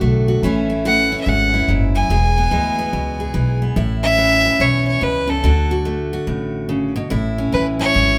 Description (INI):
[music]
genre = honky-tonk and classic country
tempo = 144 BPM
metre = 4/4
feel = swing 64% on 8ths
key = A major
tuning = A4 = 440 Hz
[part]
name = picked steel-string acoustic guitar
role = accompaniment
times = 0.0-8.2 s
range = E2 to G#4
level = -23 LUFS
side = equal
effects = none
[part]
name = upright bass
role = bass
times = 0.0-8.2 s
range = E1 to D2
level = -22 LUFS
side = equal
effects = none
[part]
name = clear fiddle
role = melody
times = 0.9-8.2 s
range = A4 to G#5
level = -20 LUFS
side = equal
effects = none
[sound]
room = moderate studio reverb, RT60 0.9 s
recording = none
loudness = -18 LUFS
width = mono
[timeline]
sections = 0.0-3.8 A section; 3.8-8.2 B section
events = none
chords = 0.4 A; 2.1 E; 3.8 A; 5.4 D; 7.1 A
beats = 0.01 | 0.43 0.84 1.26 1.68 | 2.10 2.52 2.93 3.35 | 3.77 4.19 4.61 5.02 | 5.44 5.86 6.28 6.70 | 7.11 7.53 7.95